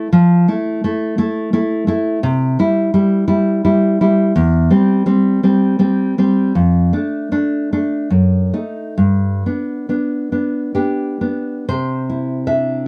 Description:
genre	romantic piece for solo classical guitar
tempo	60-88 BPM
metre	3/4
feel	rubato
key	C major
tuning	A4 = 440 Hz
part	nylon-string guitar	solo	0.0-12.9 s	E2 to E5	-16 LUFS	equal	none
room	little or no reverb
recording	dry, close 1970s-style studio recording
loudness	-16 LUFS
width	mono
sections	0.0-11.7 A section; 11.7-12.9 B section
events	none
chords	0.1 Fmaj7; 2.2 C; 4.3 C/E; 6.5 F6; 8.1 F#m6; 9.0 G; 11.7 C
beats	| 0.10 0.81 1.51 | 2.22 2.92 3.63 | 4.34 5.04 5.79 | 6.55 7.31 8.11 | 8.98 9.89 10.75 | 11.69 12.47

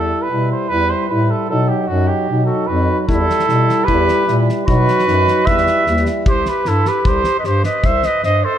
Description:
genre	balkan folk, Balkan brass band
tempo	152 BPM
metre	2/4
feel	straight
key	E harmonic minor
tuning	A4 = 442 Hz
part	mellow trumpet	melody	0.0-8.6 s	F#4 to E5	-17 LUFS	right 3 dB	none
part	clear euphonium	accompaniment	0.0-6.3 s	F#3 to G3	-23 LUFS	right 5 dB	none
part	mellow French horn	accompaniment	0.0-6.3 s	D#4 to E4	-23 LUFS	left 4 dB	none
part	mellow bass clarinet	bass	0.0-8.4 s	C2 to B2	-20 LUFS	equal	none
part	bright clarinet	second line	2.5-8.6 s	E4 to C5	-21 LUFS	left 4 dB	slapback echo
part	loose indie drum kit	percussion	3.1-8.3 s	kick drum, snare drum	-20 LUFS	left 1 dB	none
room	moderate scoring stage reverb, RT60 1.9 s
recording	none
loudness	-13 LUFS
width	side -10 dB against mid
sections	0.0-6.3 A section; 6.3-8.6 B section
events	none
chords	0.0 Em; 1.5 B; 3.1 Em; 4.7 B; 5.5 Em; 6.3 C5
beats	0.32 | 0.72 1.11 | 1.51 1.91 | 2.30 2.70 | 3.10 3.49 | 3.89 4.29 | 4.68 5.08 | 5.47 5.87 | 6.26 6.66 | 7.05 7.45 | 7.84 8.23

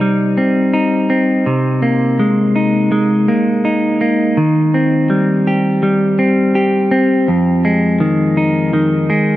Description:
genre	rock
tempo	82 BPM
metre	4/4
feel	straight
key	F minor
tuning	A4 = 440 Hz
part	clean electric guitar	solo	0.0-9.4 s	F2 to G4	-12 LUFS	equal	digital delay
room	moderate huge ambient reverb, RT60 6.9 s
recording	none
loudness	-12 LUFS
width	side -14 dB against mid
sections	0.0-7.3 A section; 7.3-9.4 A section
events	none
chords	0.0 Cm; 1.5 Abadd9/C; 4.4 Eb6; 7.3 Fm7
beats	0.01 0.74 | 1.47 2.19 2.92 3.65 | 4.38 5.10 5.83 6.55 | 7.28 8.01 8.73

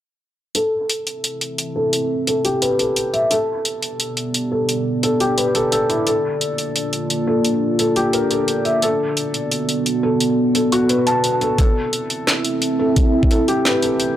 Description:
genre	half-time drum and bass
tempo	174 BPM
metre	4/4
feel	swing 53% on 16ths, half-time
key	A dorian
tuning	A4 = 440 Hz
part	drum and bass drum kit	drums	0.5-14.1 s	hi-hat, snare drum	-21 LUFS	equal	overdrive
part	dark analog pad	sustained chords	1.3-14.2 s	Bb3 to E5	-21 LUFS	right 1 dB	chorus, phaser, sidechain pumping
part	felt-muted upright piano	arpeggios	0.6-14.2 s	E4 to A5	-20 LUFS	left 1 dB	low-pass filter, analog delay
part	electronic kick drum	drums	11.6-13.3 s	none	-16 LUFS	equal	overdrive
room	light reverb, digital ambience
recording	dry, gritty hardware recording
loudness	-16 LUFS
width	side -11 dB against mid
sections	0.6-14.2 A section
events	filter sweep on analog synth pad 0.6-14.2; filter sweep on felt piano 0.6-14.2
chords	0.6 Am; 3.3 G; 6.1 Bb; 8.8 Bm; 11.6 Am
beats	| 0.55 0.90 1.24 1.58 | 1.93 2.27 2.62 2.96 | 3.31 3.65 4.00 4.34 | 4.69 5.03 5.38 5.72 | 6.07 6.41 6.76 7.10 | 7.45 7.79 8.14 8.48 | 8.83 9.17 9.52 9.86 | 10.21 10.55 10.89 11.24 | 11.59 11.93 12.28 12.62 | 12.96 13.31 13.65 14.00

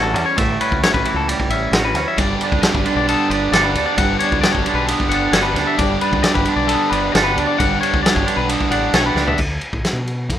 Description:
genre	math rock and midwest emo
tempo	133 BPM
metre	4/4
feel	straight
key	unclear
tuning	A4 = 439 Hz
part	twelve-string electric guitar	accompaniment	0.0-9.4 s	E2 to A4	-20 LUFS	right 6 dB	none
part	twangy electric guitar	arpeggios	0.0-9.4 s	G4 to F#5	-21 LUFS	left 8 dB	none
part	growling fingered electric bass	bass	0.0-10.4 s	G1 to B2	-24 LUFS	equal	overdrive
part	loose indie drum kit	drums	0.2-10.4 s	crash cymbal, kick drum, ride cymbal, snare drum, toms	-20 LUFS	equal	none
part	biting overdriven guitar	riff	2.2-9.4 s	G2 to G4	-23 LUFS	equal	none
room	studio ambience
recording	rough home demo mix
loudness	-15 LUFS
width	side -10 dB against mid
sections	0.0-9.4 A section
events	drum fill 9.2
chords	0.0 A7; 2.2 Gmaj7; 9.4 N.C.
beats	| 0.37 0.82 1.27 1.73 | 2.18 2.63 3.08 3.53 | 3.98 4.43 4.88 5.33 | 5.78 6.23 6.68 7.13 | 7.58 8.04 8.49 8.94 | 9.39 9.85 10.30

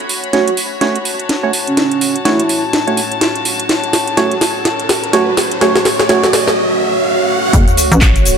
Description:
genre	bass house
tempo	125 BPM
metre	4/4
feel	swing 59% on 16ths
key	F# minor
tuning	A4 = 440 Hz
part	deep dark ambient pad	sustained chords	1.8-8.4 s	A3 to C#5	-21 LUFS	right 2 dB	chorus, built-in reverb, sidechain pumping
part	house drum kit	drums	0.0-8.4 s	handclaps, hi-hat, shaker, snare drum	-16 LUFS	equal	small room ambience
part	riser, swell and sub drop	sound effects	2.8-8.4 s	none	-21 LUFS	equal	none
part	warm studio string section	texture	0.0-8.4 s	F#4 to B5	-22 LUFS	left 5 dB	sidechain pumping
part	breathy flute-like synth lead	melody	0.3-6.3 s	C#4 to F#4	-20 LUFS	right 3 dB	chorus, dub echo
part	percussive organ stab	stabs	0.3-6.3 s	A3 to C#5	-19 LUFS	right 4 dB	chorus, sidechain pumping, dub echo
part	hollow knocking FM bass	bass	7.5-8.4 s	F#1 to A1	-12 LUFS	equal	tube saturation, sidechain pumping
part	electronic kick drum	drums	7.5-8.1 s	none	-12 LUFS	equal	small room ambience
part	jazz brush drum kit	drums	7.5-8.4 s	hi-hat, snare drum	-28 LUFS	right 4 dB	none
room	moderate lush hall reverb, RT60 2.7 s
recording	none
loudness	-11 LUFS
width	side -6 dB against mid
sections	0.0-7.5 A section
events	build-up 0.0-7.5; drum fill 0.0-6.6; filter sweep on ambient pad 0.0-7.5; riser 2.8-7.5; break 6.6-7.5; swell 6.6-7.5; impact 7.5-8.4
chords	0.0 F#m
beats	0.33 0.81 1.29 | 1.77 2.25 2.73 3.21 | 3.69 4.17 4.65 5.13 | 5.61 6.09 6.57 7.05 | 7.53 8.01

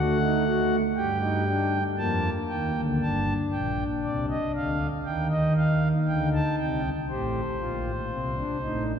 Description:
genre	classical, baroque-style 3-part fugue for pipe organ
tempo	59 BPM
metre	4/4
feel	straight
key	G minor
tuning	A4 = 440 Hz
part	pipe organ, principal	solo	0.0-8.9 s	G1 to A5	-24 LUFS	equal	none
room	wet church reverb, RT60 4.0 s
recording	recorded in a church or concert hall, nothing above 7.5 kHz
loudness	-24 LUFS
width	side -7 dB against mid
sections	0.0-3.0 A section; 3.0-9.0 B section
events	none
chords	0.0 D (rootless); 1.0 Gm; 5.1 Cm/Eb; 7.1 F/A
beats	0.97 1.98 | 3.01 4.04 5.06 6.08 | 7.09 8.11

